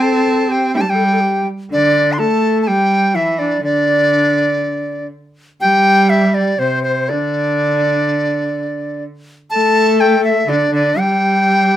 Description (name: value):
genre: chinese traditional, Chinese chamber ensemble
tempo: 62 BPM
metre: 2/4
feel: rubato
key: D shang mode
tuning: A4 = 440 Hz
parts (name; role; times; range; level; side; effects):
- bright reedy large dizi; melody; 0.0-11.8 s; C5 to C6; -15 LUFS; equal; none
- bright reedy xiao; second line; 0.0-11.8 s; D4 to C5; -19 LUFS; left 3 dB; none
- rich cello; second line; 0.0-11.8 s; C3 to C4; -18 LUFS; right 2 dB; none
room: moderate studio reverb, RT60 0.6 s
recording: none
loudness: -12 LUFS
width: side -12 dB against mid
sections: 0.0-5.6 A section; 5.6-11.8 B section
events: none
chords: none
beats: 0.75 | 1.71 2.68 | 3.64 4.62 | 5.61 6.59 | 7.57 8.55 | 9.52 10.49 | 11.47